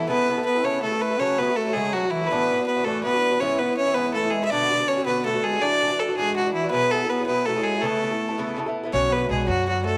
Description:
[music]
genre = celtic folk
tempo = 109 BPM (dotted quarters)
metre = 6/8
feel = straight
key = A major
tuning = A4 = 440 Hz
[part]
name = rich fiddle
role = melody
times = 0.0-10.0 s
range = E4 to E5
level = -25 LUFS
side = equal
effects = slapback echo
[part]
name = warm duduk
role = second line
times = 0.0-10.0 s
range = E3 to D4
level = -32 LUFS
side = equal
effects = none
[part]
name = Irish bouzouki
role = accompaniment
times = 0.0-10.0 s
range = G#2 to A4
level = -30 LUFS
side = equal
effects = none
[part]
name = upright bass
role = bass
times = 8.9-10.0 s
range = B1 to F#2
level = -29 LUFS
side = equal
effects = none
[sound]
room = moderate echo chamber reverb, RT60 2.1 s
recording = none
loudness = -23 LUFS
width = mono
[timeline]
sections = 0.1-8.9 A section; 8.9-10.0 B section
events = none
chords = 0.1 Aadd9; 1.2 F#m; 2.3 Dadd9; 3.4 E; 4.5 Bm; 5.6 Dadd9; 6.7 Eadd9; 7.8 Aadd9; 8.9 Bmadd9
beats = | 0.09 0.64 | 1.20 1.75 | 2.30 2.86 | 3.41 3.96 | 4.51 5.07 | 5.62 6.17 | 6.72 7.28 | 7.83 8.38 | 8.93 9.48

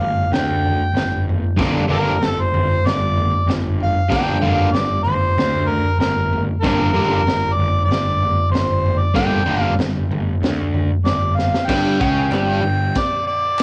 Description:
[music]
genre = garage rock duo or trio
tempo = 95 BPM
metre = 4/4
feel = straight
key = G minor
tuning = A4 = 440 Hz
[part]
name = mellow harmonica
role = melody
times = 0.0-13.6 s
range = Bb4 to G5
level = -23 LUFS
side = equal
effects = overdrive, cassette tape
[part]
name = fuzz picked electric bass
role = bass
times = 0.0-12.9 s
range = G1 to D2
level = -26 LUFS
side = equal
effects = overdrive, tube saturation
[part]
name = raw garage drum kit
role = drums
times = 0.0-13.6 s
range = crash cymbal, kick drum, snare drum, toms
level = -22 LUFS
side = equal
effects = cassette tape
[part]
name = crunchy overdriven guitar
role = riff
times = 1.6-12.9 s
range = G2 to D4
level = -22 LUFS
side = equal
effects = cassette tape
[part]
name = group handclap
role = percussion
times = 12.3-13.6 s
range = none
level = -34 LUFS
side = equal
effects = none
[sound]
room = studio ambience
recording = home recording on cassette, nothing above 10.6 kHz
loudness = -18 LUFS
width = mono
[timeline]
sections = 0.0-11.7 A section; 11.7-13.6 B section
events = drum fill 11.4-11.7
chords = 0.0 Gm; 11.7 G5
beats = 0.32 0.95 | 1.58 2.21 2.84 3.48 | 4.11 4.74 5.37 6.00 | 6.63 7.27 7.90 8.53 | 9.16 9.80 10.43 11.06 | 11.69 12.32 12.95 13.58

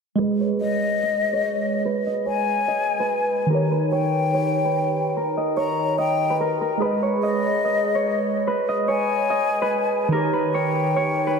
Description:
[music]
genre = hip hop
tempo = 145 BPM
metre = 4/4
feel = half-time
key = G# harmonic minor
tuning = A4 = 440 Hz
[part]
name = Celtic harp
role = melody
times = 0.2-11.4 s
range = A#4 to D#5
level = -23 LUFS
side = right 1 dB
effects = low-pass filter, tape echo
[part]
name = glassy digital keys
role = accompaniment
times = 0.2-11.4 s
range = D#3 to D#5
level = -25 LUFS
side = right 2 dB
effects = chorus, low-pass filter
[part]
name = breathy hollow jazz flute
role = second line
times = 0.6-11.4 s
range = D#5 to A#5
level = -25 LUFS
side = left 6 dB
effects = tape echo
[sound]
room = wet huge ambient reverb, RT60 4.8 s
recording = dreamy mix soaked in reverb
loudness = -20 LUFS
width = side -5 dB against mid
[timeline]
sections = 0.2-11.4 A section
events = filter sweep 0.2-11.4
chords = 0.2 G#m; 3.5 D#7; 6.8 G#m; 10.1 D#7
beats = | 0.20 0.61 1.02 1.44 | 1.85 2.27 2.68 3.09 | 3.51 3.92 4.33 4.75 | 5.16 5.58 5.99 6.40 | 6.82 7.23 7.64 8.06 | 8.47 8.89 9.30 9.71 | 10.13 10.54 10.96 11.37

